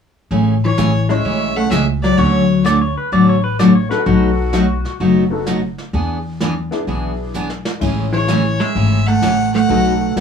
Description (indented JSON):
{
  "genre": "country, western swing",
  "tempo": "128 BPM",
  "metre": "4/4",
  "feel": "swing 67% on 8ths",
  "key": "A major",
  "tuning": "A4 = 439 Hz",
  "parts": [
    { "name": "picked steel-string acoustic guitar", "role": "accompaniment", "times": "0.3-10.2 s", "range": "B2 to G#4", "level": "-16 LUFS", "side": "equal", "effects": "none" },
    { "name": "upright bass", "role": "bass", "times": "0.3-10.2 s", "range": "F#1 to E2", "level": "-20 LUFS", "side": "left 2 dB", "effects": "none" },
    { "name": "jazz brush drum kit", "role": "drums", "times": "0.3-10.2 s", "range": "brushed snare drum, crash cymbal, hi-hat, kick drum, snare drum", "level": "-27 LUFS", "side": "equal", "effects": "none" },
    { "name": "clear fiddle", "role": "melody", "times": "0.6-2.7, 8.1-10.1 s", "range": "C#5 to F#5", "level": "-20 LUFS", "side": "left 2 dB", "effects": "none" },
    { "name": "vintage hollow-body jazz guitar", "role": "second line", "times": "0.7-2.7, 8.1-10.1 s", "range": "E3 to A3", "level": "-18 LUFS", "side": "right 1 dB", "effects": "none" },
    { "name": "honky-tonk upright piano", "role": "accompaniment", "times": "1.1-10.2 s", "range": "G#3 to C#5", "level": "-24 LUFS", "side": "left 5 dB", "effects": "none" },
    { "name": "pedal steel guitar", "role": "second line", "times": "2.7-5.0 s", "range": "F#4 to D5", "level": "-21 LUFS", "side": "left 2 dB", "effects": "none" }
  ],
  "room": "moderate club reverb, RT60 0.6 s",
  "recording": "none",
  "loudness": "-13 LUFS",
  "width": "side -7 dB against mid",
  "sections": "0.3-10.2 A section",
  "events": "drum fill 7.3-7.8",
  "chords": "0.3 Amaj7; 2.2 Dmaj7; 4.1 B7; 5.9 E7; 7.8 Amaj7; 9.7 B7",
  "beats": "| 0.31 0.78 1.25 1.72 | 2.19 2.65 3.12 3.59 | 4.06 4.53 5.00 5.47 | 5.94 6.41 6.88 7.35 | 7.82 8.29 8.76 9.23 | 9.70 10.17"
}